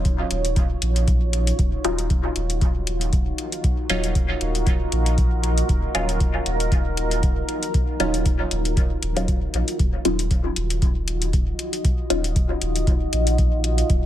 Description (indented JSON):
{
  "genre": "dub techno",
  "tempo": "117 BPM",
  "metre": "4/4",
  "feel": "swing 55% on 16ths",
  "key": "Eb minor",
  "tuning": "A4 = 441 Hz",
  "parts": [
    { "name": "deep dark ambient pad", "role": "sustained chords", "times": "0.0-14.1 s", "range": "Eb4 to Eb5", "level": "-28 LUFS", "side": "equal", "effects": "chorus, built-in reverb, sidechain pumping" },
    { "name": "filtered dub chord stab", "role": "stabs", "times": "0.0-12.3 s", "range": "Gb3 to F4", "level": "-27 LUFS", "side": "left 1 dB", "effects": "phaser, sidechain pumping, dub echo" },
    { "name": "soft dub sub bass", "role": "bass", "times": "0.0-14.1 s", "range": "Eb1 to Bb1", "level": "-24 LUFS", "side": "equal", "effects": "sidechain pumping" },
    { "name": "electronic hi-hat", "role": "drums", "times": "0.1-14.0 s", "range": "none", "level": "-30 LUFS", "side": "left 3 dB", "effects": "none" },
    { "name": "electronic kick drum", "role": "drums", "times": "0.1-14.0 s", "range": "none", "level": "-21 LUFS", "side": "equal", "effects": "none" }
  ],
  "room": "digital ambience",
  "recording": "none",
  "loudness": "-19 LUFS",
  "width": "side -12 dB against mid",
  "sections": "0.0-14.1 A section",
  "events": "none",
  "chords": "0.0 Ebm9"
}